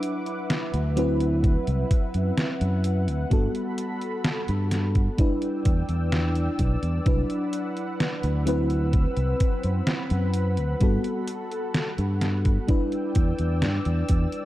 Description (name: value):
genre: vaporwave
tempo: 64 BPM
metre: 4/4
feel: straight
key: C lydian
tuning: A4 = 440 Hz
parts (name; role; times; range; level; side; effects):
- FM electric piano with soft pad layer; accompaniment; 0.0-14.5 s; F#3 to B4; -28 LUFS; equal; tremolo, analog chorus, tape echo
- lush unison pad; sustained chords; 0.0-14.5 s; C4 to E6; -35 LUFS; left 1 dB; chorus, vintage 12-bit sampler grit
- detuned 8-bit digital drum machine; drums; 0.0-14.5 s; hi-hat, snare drum; -29 LUFS; equal; none
- fingered electric bass; bass; 0.7-14.3 s; B1 to G2; -24 LUFS; equal; none
- electronic kick drum; drums; 1.4-14.3 s; none; -22 LUFS; equal; none
room: little or no reverb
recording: dark, warm production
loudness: -22 LUFS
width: side -15 dB against mid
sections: 0.0-14.5 A section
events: none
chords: 0.0 Cmaj9#11; 3.3 Gmaj9; 5.2 Em7; 7.1 Cmaj9#11; 10.8 Gmaj9; 12.7 Em7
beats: 0.50 1.44 2.37 | 3.31 4.25 5.19 6.12 | 7.06 8.00 8.94 9.87 | 10.81 11.75 12.69 13.62